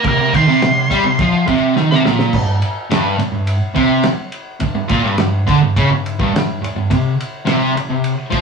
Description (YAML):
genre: garage rock duo or trio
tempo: 105 BPM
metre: 4/4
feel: straight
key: unclear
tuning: A4 = 440 Hz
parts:
  - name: octave-fuzz lead guitar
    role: melody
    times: 0.0-2.0 s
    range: F5 to D6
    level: -17 LUFS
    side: right 2 dB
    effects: distortion
  - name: fuzz guitar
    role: riff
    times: 0.0-8.4 s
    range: G2 to G3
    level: -14 LUFS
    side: right 1 dB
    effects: distortion
  - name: cloth-damped thuddy drum kit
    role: drums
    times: 0.0-8.4 s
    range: crash cymbal, kick drum, ride cymbal, snare drum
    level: -20 LUFS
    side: right 1 dB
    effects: none
room: wet studio reverb, RT60 0.5 s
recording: rough rehearsal-room recording, warm saturation, studio ambience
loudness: -13 LUFS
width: side -5 dB against mid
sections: 0.0-2.3 A section; 2.3-8.4 B section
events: lead electric guitar solo 0.0-2.3; drum fill 1.8-2.3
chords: 0.0 C5; 2.3 G5; 6.9 C5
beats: | 0.04 0.61 1.19 1.76 | 2.33 2.91 3.48 4.05 | 4.62 5.19 5.76 6.33 | 6.90 7.47 8.04